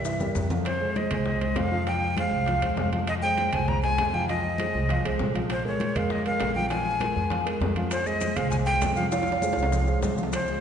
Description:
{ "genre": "Afro-Cuban jazz", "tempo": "198 BPM", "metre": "4/4", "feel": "straight", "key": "F minor", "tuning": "A4 = 445 Hz", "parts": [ { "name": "breathy bright jazz flute", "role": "melody", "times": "0.0-10.6 s", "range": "C5 to Bb5", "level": "-28 LUFS", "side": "equal", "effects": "none" }, { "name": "dark concert grand piano", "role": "accompaniment", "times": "0.0-10.6 s", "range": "E3 to F5", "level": "-29 LUFS", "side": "equal", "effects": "none" }, { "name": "upright bass", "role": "bass", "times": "0.0-10.6 s", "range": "Bb1 to G2", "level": "-29 LUFS", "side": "equal", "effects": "none" }, { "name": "maracas", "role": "percussion", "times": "0.0-0.7, 7.9-10.6 s", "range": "none", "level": "-42 LUFS", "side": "left 6 dB", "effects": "none" }, { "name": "bongos", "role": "percussion", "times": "0.1-10.5 s", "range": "none", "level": "-37 LUFS", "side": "left 4 dB", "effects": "none" }, { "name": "congas", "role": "percussion", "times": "0.2-10.6 s", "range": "none", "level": "-35 LUFS", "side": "left 1 dB", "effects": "none" }, { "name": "timbales", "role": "percussion", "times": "0.2-10.5 s", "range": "none", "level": "-35 LUFS", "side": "right 3 dB", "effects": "none" } ], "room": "wet concert hall reverb, RT60 2.2 s", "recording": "recorded in a church or concert hall, nothing above 10.5 kHz", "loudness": "-23 LUFS", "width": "side -8 dB against mid", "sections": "0.7-10.6 A section", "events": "drum fill 0.0-0.7, 9.1-10.3", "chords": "0.0 C7 (rootless); 0.7 Fm7; 5.5 Bb7(no3); 7.9 Fm", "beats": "0.05 0.35 | 0.66 0.96 1.26 1.57 | 1.87 2.17 2.48 2.78 | 3.08 3.38 3.69 3.99 | 4.29 4.59 4.90 5.20 | 5.50 5.80 6.11 6.41 | 6.71 7.01 7.31 7.62 | 7.92 8.22 8.52 8.82 | 9.12 9.42 9.72 10.03 | 10.33" }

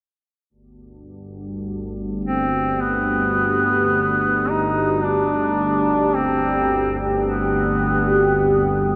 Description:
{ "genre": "dark ambient drone", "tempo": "free time", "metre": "none", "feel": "none", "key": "G major", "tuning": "A4 = 442 Hz", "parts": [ { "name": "deep dark ambient pad", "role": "sustained chords", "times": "2.4-9.0 s", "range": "G4 to G5", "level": "-25 LUFS", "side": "equal", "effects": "chorus, built-in reverb" }, { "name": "organ-like drone", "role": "drone", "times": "1.1-9.0 s", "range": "G1 to D2", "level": "-26 LUFS", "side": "equal", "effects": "ensemble chorus, built-in reverb" }, { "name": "clear duduk", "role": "melody", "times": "2.2-8.9 s", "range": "B3 to Eb4", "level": "-22 LUFS", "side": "equal", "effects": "diffuse ambient delay" } ], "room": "wet huge ambient reverb, RT60 8.6 s", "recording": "cassette tape", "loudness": "-20 LUFS", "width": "mono", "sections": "0.5-9.0 A section", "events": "none", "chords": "0.5 G", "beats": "free time" }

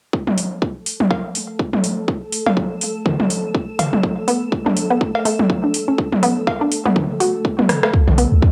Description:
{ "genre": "minimal techno", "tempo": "123 BPM", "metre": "4/4", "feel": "swing 58% on 16ths", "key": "unclear", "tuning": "A4 = 438 Hz", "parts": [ { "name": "electronic kick drum", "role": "drums", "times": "0.1-8.5 s", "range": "none", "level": "-21 LUFS", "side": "equal", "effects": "high-pass filter on kick, cassette tape, high-pass filter on room" }, { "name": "swarming drone", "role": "texture", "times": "0.9-8.5 s", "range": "A3 to A4", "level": "-30 LUFS", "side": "equal", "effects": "built-in reverb, sidechain pumping, cassette tape" }, { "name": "electronic toms and cowbell", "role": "percussion", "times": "0.3-8.5 s", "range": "none", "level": "-22 LUFS", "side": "equal", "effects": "cassette tape" }, { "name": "house drum kit", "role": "drums", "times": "0.4-8.3 s", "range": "hi-hat, rim click", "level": "-25 LUFS", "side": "equal", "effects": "cassette tape" }, { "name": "resonant blip pluck", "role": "riff", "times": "4.3-8.2 s", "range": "A3 to F#4", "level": "-22 LUFS", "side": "equal", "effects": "chorus, sidechain pumping, cassette tape, analog delay" }, { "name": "punchy sub bass", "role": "bass", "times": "8.1-8.4 s", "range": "B1 to D2", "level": "-16 LUFS", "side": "equal", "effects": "tube saturation, sidechain pumping" } ], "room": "moderate studio reverb, RT60 0.6 s", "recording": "home recording on cassette", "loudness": "-19 LUFS", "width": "mono", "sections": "0.1-7.9 A section", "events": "drum fill 7.7", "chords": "0.1 N.C.; 7.9 Bm", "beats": "| 0.13 0.62 1.11 1.59 | 2.08 2.57 3.06 3.54 | 4.03 4.52 5.01 5.50 | 5.98 6.47 6.96 7.45 | 7.94 8.42" }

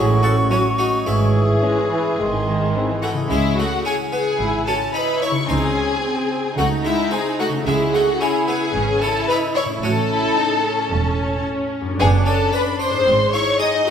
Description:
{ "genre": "cinematic, playful, whimsical film cue", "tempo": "110 BPM", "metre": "4/4", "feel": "straight", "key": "C# minor", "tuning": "A4 = 441 Hz", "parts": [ { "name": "harpsichord", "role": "melody", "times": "0.0-13.9 s", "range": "G#3 to G#4", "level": "-26 LUFS", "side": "left 1 dB", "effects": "none" }, { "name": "rich studio violin section", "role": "melody", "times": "0.0-13.9 s", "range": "F#4 to D#6", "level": "-27 LUFS", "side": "left 3 dB", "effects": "none" }, { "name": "bright silver concert flute", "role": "second line", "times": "0.0-3.0 s", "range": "B#5 to C#6", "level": "-25 LUFS", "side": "equal", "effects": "none" }, { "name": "mellow clarinet", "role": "second line", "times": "0.0-3.0 s", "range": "F#4 to A4", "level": "-25 LUFS", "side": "left 1 dB", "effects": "none" }, { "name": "mellow bassoon", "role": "accompaniment", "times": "0.0-3.0 s", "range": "D#3 to F#3", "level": "-26 LUFS", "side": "right 2 dB", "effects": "none" }, { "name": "concert harp", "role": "arpeggios", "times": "0.0-13.9 s", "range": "F#2 to C#6", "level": "-27 LUFS", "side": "left 5 dB", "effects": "none" }, { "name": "rich symphonic cello section", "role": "bass", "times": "0.0-13.5 s", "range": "E2 to C#3", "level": "-26 LUFS", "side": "right 3 dB", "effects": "none" }, { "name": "warm studio double bass section", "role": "bass", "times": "0.0-13.5 s", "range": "E1 to C#2", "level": "-23 LUFS", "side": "right 4 dB", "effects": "none" }, { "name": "warm studio violin section", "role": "second line", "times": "0.5-13.9 s", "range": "B#3 to D#5", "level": "-21 LUFS", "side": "left 2 dB", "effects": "none" }, { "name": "rich studio viola section", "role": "accompaniment", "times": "0.5-13.9 s", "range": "D#3 to G#4", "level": "-25 LUFS", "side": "right 2 dB", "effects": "none" }, { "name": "warm French horn section", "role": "sustained chords", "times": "0.5-2.9 s", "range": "B#3 to F#4", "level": "-32 LUFS", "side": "left 3 dB", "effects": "none" } ], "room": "wet scoring stage reverb, RT60 1.9 s", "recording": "none", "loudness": "-17 LUFS", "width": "side -8 dB against mid", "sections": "0.0-3.3 A section; 3.3-13.9 B section", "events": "none", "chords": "0.0 F#m/A; 1.1 C#m/G#; 2.2 G#; 3.3 C#m; 5.5 G#7/C#; 7.7 C#m; 9.8 A; 12.0 D/F#; 13.1 G#5", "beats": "0.51 | 1.07 1.64 2.20 2.75 | 3.31 3.86 4.40 4.95 | 5.49 6.03 6.58 7.12 | 7.67 8.21 8.75 9.29 | 9.83 10.37 10.91 11.46 | 12.00 12.53 13.06 13.60" }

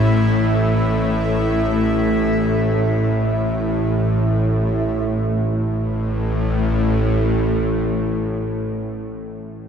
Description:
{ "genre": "ambient", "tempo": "free time", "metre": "none", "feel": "none", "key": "unclear", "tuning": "A4 = 440 Hz", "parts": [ { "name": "bowed-like drone", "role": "drone", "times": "0.0-8.8 s", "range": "A1 to A2", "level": "-18 LUFS", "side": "equal", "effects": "built-in reverb" }, { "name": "bubbling stepped-filter texture", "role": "texture", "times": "0.0-5.1 s", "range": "E4 to E5", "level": "-27 LUFS", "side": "right 1 dB", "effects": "chorus, built-in reverb" } ], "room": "wet cathedral reverb, RT60 5.6 s", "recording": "dark, warm production", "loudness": "-17 LUFS", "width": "side -7 dB against mid", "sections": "0.0-5.0 A section; 5.0-9.7 B section", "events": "none", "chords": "0.0 A5; 5.0 N.C.", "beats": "free time" }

